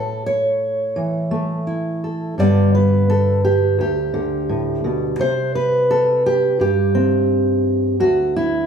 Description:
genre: folk, solo fingerstyle acoustic guitar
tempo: 85 BPM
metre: 4/4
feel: straight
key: unclear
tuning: A4 = 440 Hz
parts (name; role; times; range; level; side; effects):
- fingerpicked steel-string acoustic guitar; solo; 0.0-8.7 s; D2 to D5; -16 LUFS; equal; none
room: moderate large studio reverb, RT60 1.0 s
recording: band playing live in one room, studio reverb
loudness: -16 LUFS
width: side -7 dB against mid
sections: 0.0-8.7 A section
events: none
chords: 0.0 A; 2.4 G; 5.2 C5; 8.0 N.C.

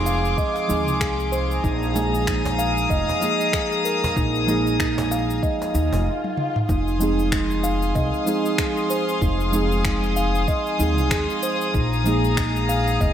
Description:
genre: organic downtempo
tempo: 95 BPM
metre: 4/4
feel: swing 58% on 16ths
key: F minor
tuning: A4 = 440 Hz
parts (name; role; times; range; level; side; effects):
- muted felt-like synth keys; accompaniment; 0.0-13.1 s; F3 to Ab4; -27 LUFS; right 1 dB; chorus, sidechain pumping, tape echo
- warm studio string section; sustained chords; 0.0-13.1 s; Ab4 to Eb6; -26 LUFS; left 2 dB; vintage 12-bit sampler grit, sidechain pumping
- upright bass; bass; 0.0-13.1 s; F1 to Eb2; -24 LUFS; left 1 dB; sidechain pumping
- drifting glass-harmonics texture; texture; 0.0-6.1 s; Ab4 to Ab5; -35 LUFS; right 1 dB; chorus, built-in reverb
- steel tongue drum; arpeggios; 0.1-13.1 s; Eb4 to F5; -25 LUFS; right 3 dB; tape echo
- organic electronic drum kit; drums; 0.1-13.1 s; cabasa, finger snaps, toms; -30 LUFS; left 1 dB; small room ambience
- cajon; percussion; 0.1-6.0 s; none; -32 LUFS; right 1 dB; none
- electronic kick drum; drums; 0.4-13.1 s; none; -25 LUFS; left 1 dB; small room ambience
- swell; sound effects; 5.7-6.7 s; none; -31 LUFS; left 3 dB; none
room: moderate lush hall reverb, RT60 1.6 s, small room ambience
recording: dreamy mix soaked in reverb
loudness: -19 LUFS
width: side -10 dB against mid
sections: 0.0-6.7 A section; 6.7-13.1 B section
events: filter sweep on steel tongue drum 0.0-6.7; swell 5.7-6.7; stop 6.1-6.7; drum fill 6.2-6.7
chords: 0.0 Fm7; 1.6 Bb7sus4; 6.7 Fm7

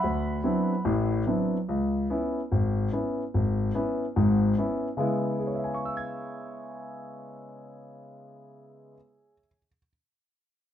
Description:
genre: jazz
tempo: 145 BPM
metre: 4/4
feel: swing 67% on 8ths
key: C# minor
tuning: A4 = 440 Hz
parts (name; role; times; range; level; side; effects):
- warm concert grand piano; solo; 0.0-9.9 s; G#1 to G#6; -26 LUFS; left 1 dB; none
room: moderate studio reverb, RT60 0.7 s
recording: none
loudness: -25 LUFS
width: side -10 dB against mid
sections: 0.0-5.0 A section; 5.0-8.3 B section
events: none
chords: 0.0 D13; 1.7 C#m7

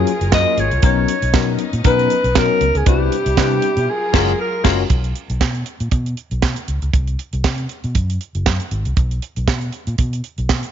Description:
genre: early-eighties boogie funk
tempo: 118 BPM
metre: 4/4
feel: swing 56% on 16ths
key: B lydian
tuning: A4 = 440 Hz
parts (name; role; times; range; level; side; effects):
- mellow alto saxophone; melody; 0.0-4.8 s; G4 to D#5; -19 LUFS; right 1 dB; slapback echo
- barky tine electric piano; accompaniment; 0.0-4.8 s; F#3 to B4; -21 LUFS; left 14 dB; wide subtle chorus
- warm studio string section; sustained chords; 0.0-4.9 s; C3 to A#4; -28 LUFS; left 3 dB; none
- vintage muted fingered electric bass; bass; 0.0-10.6 s; F#1 to C3; -20 LUFS; equal; none
- tight funk drum kit; drums; 0.1-10.7 s; crash cymbal, handclaps, hi-hat, kick drum, snare drum; -18 LUFS; right 3 dB; none
room: light reverb, studio reverb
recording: 1960s-style stereo, nothing above 7.5 kHz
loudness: -15 LUFS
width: side -9 dB against mid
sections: 0.0-4.9 A section; 4.9-10.7 B section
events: band accent 3.9-4.9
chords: 0.0 F#maj9; 0.8 Bmaj9; 2.9 Cmaj9; 3.9 F#maj9; 4.9 N.C.

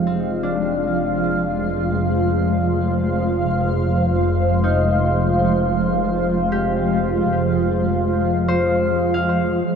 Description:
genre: ambient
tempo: 75 BPM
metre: 3/4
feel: straight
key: F dorian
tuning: A4 = 440 Hz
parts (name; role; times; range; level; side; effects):
- shimmering ambient pad; sustained chords; 0.0-9.8 s; F3 to F5; -19 LUFS; right 1 dB; chorus, built-in reverb, phaser
- concert harp; arpeggios; 0.0-9.8 s; C4 to F5; -26 LUFS; left 4 dB; ping-pong delay
- warm studio double bass section; bass; 0.0-9.8 s; F1; -23 LUFS; equal; none
room: wet huge ambient reverb, RT60 8.3 s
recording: dark, warm production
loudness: -17 LUFS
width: side -7 dB against mid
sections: 0.0-9.7 A section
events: fade-in on harp 0.0-9.7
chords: 0.0 Fm7

